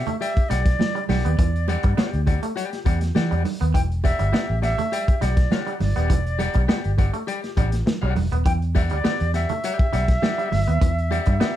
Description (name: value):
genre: funk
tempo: 102 BPM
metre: 4/4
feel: straight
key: E minor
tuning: A4 = 444 Hz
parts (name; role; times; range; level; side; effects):
- silver concert flute; melody; 0.0-11.6 s; D5 to G5; -28 LUFS; right 1 dB; none
- electric guitar at the edge of break-up; accompaniment; 0.0-11.6 s; G4 to G5; -29 LUFS; left 7 dB; tremolo
- twangy electric guitar; riff; 0.1-11.5 s; E3 to B3; -32 LUFS; right 5 dB; none
- crunchy breakbeat drum kit; drums; 0.1-11.6 s; hi-hat, kick drum, snare drum; -22 LUFS; equal; none
- congas; percussion; 0.1-11.6 s; none; -30 LUFS; right 7 dB; none
- vintage muted fingered electric bass; bass; 0.4-11.4 s; D#1 to E3; -22 LUFS; equal; none
room: light reverb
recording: dark, warm production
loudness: -19 LUFS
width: side -12 dB against mid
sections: 0.0-11.6 A section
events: none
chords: 0.0 Em9